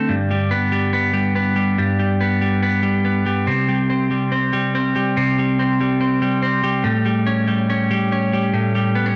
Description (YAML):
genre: indie pop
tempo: 142 BPM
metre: 4/4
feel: straight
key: G major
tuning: A4 = 440 Hz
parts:
  - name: twelve-string electric guitar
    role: solo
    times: 0.0-9.2 s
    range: G2 to C#4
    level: -19 LUFS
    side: equal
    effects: cassette tape
room: moderate spring reverb, RT60 1.4 s, digital ambience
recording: home recording on cassette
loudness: -19 LUFS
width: mono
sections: 0.0-9.2 A section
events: none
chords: 0.1 G; 3.5 C5; 6.9 A7